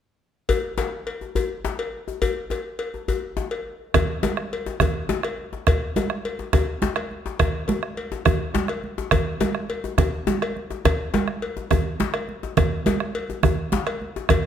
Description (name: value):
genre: west african traditional, West African drum ensemble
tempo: 139 BPM (dotted quarters)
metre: 12/8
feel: straight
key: none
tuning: none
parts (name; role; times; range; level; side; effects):
- cowbell; percussion; 0.5-14.4 s; none; -29 LUFS; left 3 dB; none
- djembe; percussion; 0.5-14.4 s; none; -27 LUFS; left 5 dB; none
- bombo; percussion; 3.9-14.4 s; none; -24 LUFS; right 2 dB; none
- congas; percussion; 3.9-14.4 s; none; -26 LUFS; right 6 dB; none
room: moderate recital hall reverb, RT60 1.4 s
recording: close, detailed microphones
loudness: -22 LUFS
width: side -9 dB against mid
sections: 0.5-3.9 A section; 3.9-14.5 B section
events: none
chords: none